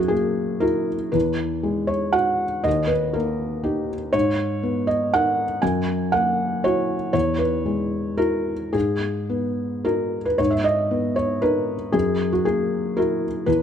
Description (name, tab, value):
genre	neoclassical minimalist piano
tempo	108-124 BPM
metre	3/4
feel	rubato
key	G# minor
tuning	A4 = 435 Hz
part	felt-muted upright piano	solo	0.0-13.6 s	D#2 to G#5	-20 LUFS	equal	none
room	light reverb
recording	close, detailed microphones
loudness	-20 LUFS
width	side -8 dB against mid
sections	0.0-10.4 A section; 10.4-13.6 A section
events	none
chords	0.0 F#7; 1.1 Eadd9; 2.7 D#; 4.1 G#madd9; 5.6 F#7; 7.1 Eadd9; 8.7 G#m7; 10.4 G#madd9; 11.9 F#7